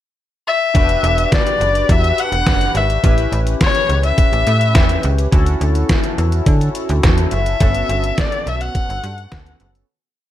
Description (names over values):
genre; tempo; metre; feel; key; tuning
early-eighties boogie funk; 105 BPM; 4/4; straight; unclear; A4 = 440 Hz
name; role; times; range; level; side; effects
rich erhu; melody; 0.5-9.6 s; C#5 to F#5; -18 LUFS; left 4 dB; slapback echo
chorused polysynth; accompaniment; 0.7-9.9 s; A3 to B4; -23 LUFS; equal; none
slap-like FM bass; bass; 0.7-9.8 s; E1 to D3; -17 LUFS; equal; none
detuned 8-bit digital drum machine; drums; 0.7-9.9 s; hi-hat, kick drum, snare drum; -16 LUFS; equal; none
room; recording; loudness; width
little or no reverb; dark, warm production; -13 LUFS; side -12 dB against mid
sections
0.0-0.7 pickup bar; 0.7-9.9 verse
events
fade-out 7.6-9.9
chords
0.0 N.C.; 0.7 Em9; 3.0 A7; 5.3 Dmaj9; 7.6 Gmaj9#11